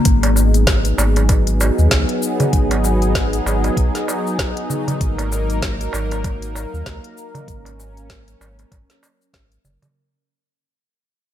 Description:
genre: organic downtempo.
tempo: 97 BPM.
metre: 4/4.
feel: swing 58% on 16ths.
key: G# minor.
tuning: A4 = 439 Hz.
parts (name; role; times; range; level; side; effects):
warm analog pad; sustained chords; 0.1-9.9 s; F#3 to A#4; -22 LUFS; equal; chorus, sidechain pumping.
warm sub bass; bass; 0.1-9.8 s; F#1 to D#2; -18 LUFS; equal; tube saturation, sidechain pumping.
afro-pop drum kit; drums; 0.1-9.9 s; hi-hat, shaker, snare drum; -23 LUFS; left 1 dB; none.
electronic kick drum; drums; 0.1-9.5 s; none; -19 LUFS; equal; none.
darbuka; percussion; 0.2-9.9 s; none; -25 LUFS; right 3 dB; none.
room: little or no reverb.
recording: none.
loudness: -15 LUFS.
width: side -11 dB against mid.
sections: 0.1-10.0 A section.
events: fade-out 0.1-10.0.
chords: 0.1 G#m7; 5.0 D#m/G#.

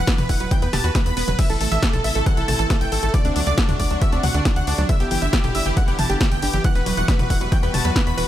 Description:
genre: uplifting trance.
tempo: 137 BPM.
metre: 4/4.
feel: straight.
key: E minor.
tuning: A4 = 440 Hz.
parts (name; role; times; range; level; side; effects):
supersaw stab; melody; 0.0-8.3 s; D4 to B5; -26 LUFS; right 1 dB; sidechain pumping, ping-pong delay.
analog pluck; second line; 0.0-8.3 s; D5 to B6; -30 LUFS; right 1 dB; chorus, sidechain pumping, ping-pong delay.
tight sequencer bass; bass; 0.0-8.2 s; E1 to E2; -24 LUFS; equal; tube saturation, sidechain pumping.
wide unison pluck; arpeggios; 0.1-8.2 s; D3 to A4; -29 LUFS; right 4 dB; sidechain pumping, ping-pong delay.
electronic kick drum; drums; 0.1-8.0 s; none; -20 LUFS; equal; none.
punchy analog drum machine; drums; 0.1-8.3 s; crash cymbal, hi-hat, snare drum, toms; -25 LUFS; left 1 dB; none.
dark chamber string section; sustained chords; 1.4-8.3 s; C3 to A4; -30 LUFS; left 3 dB; sidechain pumping.
room: little or no reverb.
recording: none.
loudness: -17 LUFS.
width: side -12 dB against mid.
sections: 0.0-8.3 A section.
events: none.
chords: 0.0 Emadd9; 1.4 Am; 3.1 D7; 4.9 G6; 6.6 Emadd9.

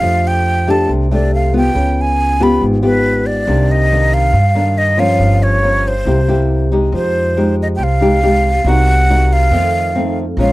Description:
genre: bossa nova.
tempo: 139 BPM.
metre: 4/4.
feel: straight.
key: C minor, F minor from 6.9 s.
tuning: A4 = 440 Hz.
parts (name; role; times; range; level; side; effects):
breathy jazz flute; melody; 0.0-10.5 s; Cb5 to Cb6; -16 LUFS; right 1 dB; none.
nylon-string guitar; accompaniment; 0.0-10.5 s; F2 to G4; -16 LUFS; left 1 dB; none.
upright bass; bass; 0.0-10.5 s; G1 to G2; -15 LUFS; equal; none.
room: little or no reverb.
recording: dry, close 1970s-style studio recording.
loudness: -11 LUFS.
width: side -18 dB against mid.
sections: 0.0-6.9 A section; 6.9-10.5 B section.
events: none.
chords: 0.0 F69; 1.8 Db7#11; 3.5 Cm9; 5.2 Gm7b5; 6.1 C7; 6.9 Fm9; 8.7 Cm7b5; 9.5 F7.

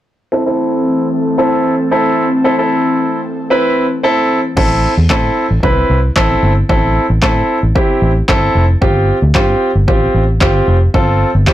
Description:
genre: dance-pop.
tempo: 113 BPM.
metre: 4/4.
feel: straight.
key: A minor.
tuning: A4 = 439 Hz.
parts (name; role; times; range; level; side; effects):
clear baby grand piano; accompaniment; 0.3-11.5 s; C4 to B4; -14 LUFS; equal; sidechain pumping, low-pass filter.
airy breathy pad; sustained chords; 0.3-4.5 s; E3 to A4; -18 LUFS; left 1 dB; chorus, sidechain pumping, low-pass filter.
vintage muted fingered electric bass; bass; 4.6-11.5 s; F1 to A2; -13 LUFS; equal; sidechain pumping.
punchy analog drum machine; drums; 4.6-11.5 s; crash cymbal, handclaps, kick drum; -15 LUFS; equal; overdrive.
room: moderate studio reverb, RT60 0.6 s.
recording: blown-out, overdriven recording, overdrive.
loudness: -10 LUFS.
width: side -13 dB against mid.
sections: 0.3-4.6 A section; 4.6-11.5 B section.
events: filter sweep 0.3-4.6.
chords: 0.3 Am; 8.8 G7sus4.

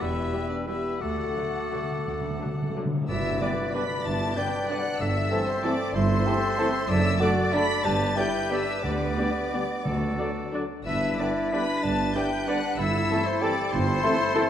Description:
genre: classical, orchestral ballroom waltz.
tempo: 163-205 BPM.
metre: 3/4.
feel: rubato.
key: G major.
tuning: A4 = 440 Hz.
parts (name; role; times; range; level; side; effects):
rich studio violin section; melody; 0.0-14.5 s; D5 to B6; -35 LUFS; left 3 dB; none.
clear oboe; second line; 0.0-14.5 s; A4 to E5; -35 LUFS; equal; none.
silver concert flute; second line; 0.0-14.5 s; C5 to E6; -34 LUFS; left 2 dB; none.
warm clarinet; second line; 0.0-14.5 s; D4 to B4; -34 LUFS; left 2 dB; none.
warm bassoon; accompaniment; 0.0-14.5 s; G3 to G4; -31 LUFS; equal; none.
mellow French horn section; sustained chords; 0.0-14.5 s; A3 to B4; -35 LUFS; left 3 dB; none.
rich studio cello section; bass; 0.0-14.0 s; D2 to G2; -33 LUFS; right 2 dB; none.
rich studio double bass section; bass; 0.0-14.0 s; E1 to D2; -34 LUFS; right 2 dB; none.
rich symphonic violin section; second line; 0.3-14.5 s; G3 to B5; -36 LUFS; left 4 dB; none.
rich studio viola section; accompaniment; 0.3-14.4 s; D3 to B4; -36 LUFS; equal; none.
cymbal swell and tam-tam; percussion; 1.0-4.3 s; none; -40 LUFS; left 2 dB; none.
timpani; percussion; 1.0-5.4, 8.8-10.3 s; G2 to D3; -34 LUFS; equal; none.
dark tuba; bass; 3.1-14.0 s; F#1 to D2; -34 LUFS; right 3 dB; none.
bright trombone section; sustained chords; 3.4-14.5 s; D3 to A3; -36 LUFS; right 2 dB; none.
mellow trumpet; stabs; 3.4-14.5 s; A4 to D5; -36 LUFS; right 1 dB; none.
room: wet scoring stage reverb, RT60 2.0 s.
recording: dark, warm production.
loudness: -23 LUFS.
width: side -10 dB against mid.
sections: 0.0-3.1 A section; 3.1-14.5 B section.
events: timpani fill 1.0-3.1; band accent 3.1-3.4.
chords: 0.0 Em; 1.0 D; 3.1 G; 5.0 Am7/G; 6.9 D/F#; 7.8 G; 8.8 G/D; 9.9 D; 10.9 G; 12.8 Am7/G.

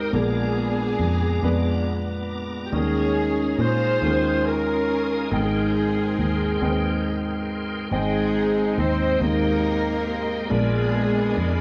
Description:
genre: gospel.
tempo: 46 BPM (dotted quarters).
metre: 6/8.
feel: straight.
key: Ab major.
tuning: A4 = 440 Hz.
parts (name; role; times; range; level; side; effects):
dark studio string section; melody; 0.0-11.6 s; Cb4 to C5; -30 LUFS; equal; none.
mellow alto saxophone; melody; 0.0-11.6 s; Ab3 to C5; -29 LUFS; equal; none.
dark concert grand piano; accompaniment; 0.0-11.6 s; Ab2 to G5; -28 LUFS; equal; none.
bright tonewheel organ; sustained chords; 0.0-11.6 s; Ab3 to Eb6; -35 LUFS; equal; fast rotary speaker, chorus vibrato.
fingered electric bass; bass; 0.0-11.6 s; Ab1 to Bb2; -28 LUFS; equal; none.
room: light reverb, small room ambience.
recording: none.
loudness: -23 LUFS.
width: mono.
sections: 0.0-7.9 A section; 7.9-11.6 A section.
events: none.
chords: 0.1 Bb7b9; 2.7 Eb9sus4; 5.3 Abmaj9; 7.9 Abmaj7; 10.5 Bb7b9.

